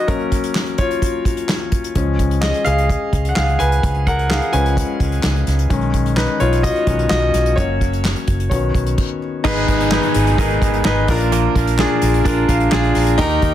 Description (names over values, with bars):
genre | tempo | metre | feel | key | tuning
piano-driven pop | 128 BPM | 4/4 | straight | Db mixolydian | A4 = 436 Hz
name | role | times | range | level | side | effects
clear grand piano | accompaniment | 0.0-13.5 s | Ab2 to Ab5 | -18 LUFS | left 2 dB | none
unplugged drum kit | drums | 0.1-13.5 s | crash cymbal, handclaps, hi-hat, kick drum, snare drum | -21 LUFS | equal | soft clipping on kick
vintage muted fingered electric bass | bass | 2.0-13.5 s | Gb1 to Eb2 | -19 LUFS | equal | none
direct-recorded clean electric guitar | riff | 9.4-13.5 s | Ab2 to Bb4 | -23 LUFS | right 12 dB | none
downlifter | sound effects | 9.4-13.2 s | none | -30 LUFS | right 2 dB | none
room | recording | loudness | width
light reverb, studio ambience | dense, heavily limited modern master | -15 LUFS | side -11 dB against mid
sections
0.0-9.4 A section; 9.4-13.5 B section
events
grand piano solo 0.0-9.4; stop 9.0-9.4; grand piano fill 12.3-13.2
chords
0.1 Gb; 2.0 Db; 5.7 Cb6; 7.6 Gb; 8.5 Cbadd9; 9.4 Abm; 11.1 Bb